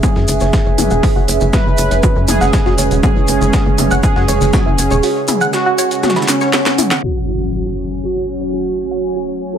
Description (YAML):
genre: melodic techno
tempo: 120 BPM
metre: 4/4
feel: straight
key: F# minor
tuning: A4 = 439 Hz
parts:
  - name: analog synth brass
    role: melody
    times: 0.0-9.6 s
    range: C#4 to B4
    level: -19 LUFS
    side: right 2 dB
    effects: chorus, sidechain pumping, dub echo
  - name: lush unison pad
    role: sustained chords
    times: 0.0-9.6 s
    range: C#3 to G#5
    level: -22 LUFS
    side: equal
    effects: chorus, phaser, sidechain pumping
  - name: tight sequenced synth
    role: arpeggios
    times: 0.0-9.6 s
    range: E4 to F#5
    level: -22 LUFS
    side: equal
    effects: chorus, sidechain pumping, analog delay
  - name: breakbeat sampler-style drum kit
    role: drums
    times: 0.0-7.0 s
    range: hi-hat, shaker, snare drum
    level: -27 LUFS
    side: right 1 dB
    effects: high-pass filter on perc, high-pass filter on snare, high-pass filter on hats
  - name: electronic kick drum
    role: drums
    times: 0.0-4.6 s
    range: none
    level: -15 LUFS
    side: equal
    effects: none
  - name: techno drum kit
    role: drums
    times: 0.0-7.1 s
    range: crash cymbal, hi-hat, snare drum, toms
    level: -19 LUFS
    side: left 1 dB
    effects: low-pass filter on hats, low-pass filter on toms, low-pass filter on snare, low-pass filter on cymbals, low-pass filter on room
  - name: shekere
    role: percussion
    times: 0.0-7.0 s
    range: none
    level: -26 LUFS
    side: left 3 dB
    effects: dub echo
  - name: warbly tape-like pad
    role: texture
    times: 0.0-9.6 s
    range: A3 to F#5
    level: -24 LUFS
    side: right 4 dB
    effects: chorus, built-in reverb, sidechain pumping
  - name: tight sequencer bass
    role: bass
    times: 0.2-5.0 s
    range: E1 to F#2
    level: -16 LUFS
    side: equal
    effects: sidechain pumping
  - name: impact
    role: sound effects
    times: 7.0-9.0 s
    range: none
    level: -23 LUFS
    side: left 1 dB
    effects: none
room: light reverb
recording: echo-heavy mix, low-pass filter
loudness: -12 LUFS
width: side -9 dB against mid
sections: 0.0-7.0 A section; 7.0-9.6 B section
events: filter sweep on synth arpeggio sound 0.0-7.0; kick drops out 5.0-7.0; drum fill 6.3-7.0; impact 7.0-9.0; filter sweep on analog polysynth 7.0-9.6; filter sweep 7.0-9.6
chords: 0.0 C#m7; 7.0 F#m